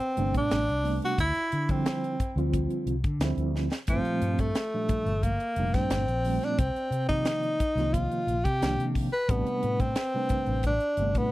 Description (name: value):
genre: electric jazz fusion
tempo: 89 BPM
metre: 4/4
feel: straight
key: unclear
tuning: A4 = 440 Hz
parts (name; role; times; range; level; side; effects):
- warm tenor saxophone; melody; 0.0-11.3 s; F3 to B4; -28 LUFS; equal; tape echo
- crisp fusion drum kit; drums; 0.0-11.3 s; hi-hat, kick drum, snare drum; -30 LUFS; equal; none
- overdriven tine electric piano; accompaniment; 0.2-11.3 s; Bb2 to D5; -31 LUFS; right 2 dB; fast tremolo, lush chorus
- fretless electric bass; bass; 0.2-11.3 s; F1 to D3; -29 LUFS; equal; none
room: little or no reverb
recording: dry, close 1970s-style studio recording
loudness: -25 LUFS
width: side -17 dB against mid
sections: 0.0-11.3 A section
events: drum fill 3.5-3.9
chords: 0.0 Am11; 1.2 Dm11; 3.9 Gm11; 6.6 Cm11; 9.3 Am11